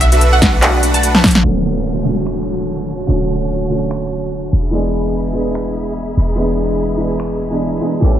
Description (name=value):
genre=future bass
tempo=146 BPM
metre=4/4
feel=swing 55% on 16ths, half-time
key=D major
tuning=A4 = 440 Hz
part: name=wide unison pluck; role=melody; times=0.0-1.4 s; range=E5 to A5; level=-19 LUFS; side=right 3 dB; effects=wide subtle chorus, sidechain pumping, diffuse ambient delay
part: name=warm 808-style bass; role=bass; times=0.0-8.2 s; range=D1 to B1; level=-18 LUFS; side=equal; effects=sidechain pumping
part: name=big-room dance drum kit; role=drums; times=0.0-7.3 s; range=finger snaps, handclaps, hi-hat, snare drum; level=-15 LUFS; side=equal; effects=overdrive
part: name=airy dreamy lead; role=arpeggios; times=0.1-1.2 s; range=E5 to A5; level=-25 LUFS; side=equal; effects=none
part: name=supersaw chords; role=riff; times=0.1-1.2 s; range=A3 to A5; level=-19 LUFS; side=equal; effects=lush chorus, sidechain pumping, low-pass filter, diffuse ambient delay
part: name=electronic kick drum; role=drums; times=0.4-1.3 s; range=none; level=-16 LUFS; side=equal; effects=overdrive
part: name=felt-muted upright piano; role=accompaniment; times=1.4-8.2 s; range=D3 to G#4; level=-18 LUFS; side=right 1 dB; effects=wide subtle chorus, sidechain pumping, diffuse ambient delay
part: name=clear studio string section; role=sustained chords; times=1.4-8.2 s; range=F#4 to B5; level=-29 LUFS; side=equal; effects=sidechain pumping, low-pass filter
part: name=downlifter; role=sound effects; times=1.5-4.7 s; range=none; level=-24 LUFS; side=right 1 dB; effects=none
room=moderate plate reverb, RT60 1.7 s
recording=dreamy mix soaked in reverb, low-pass filter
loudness=-13 LUFS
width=side -11 dB against mid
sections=0.0-1.4 A section; 1.4-8.2 B section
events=drop 0.0-1.4; drum fill 1.1-1.4; filter sweep on string section 1.4-8.2; filter sweep 1.4-8.2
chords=0.0 Bm7; 1.4 Dmaj7; 4.5 E7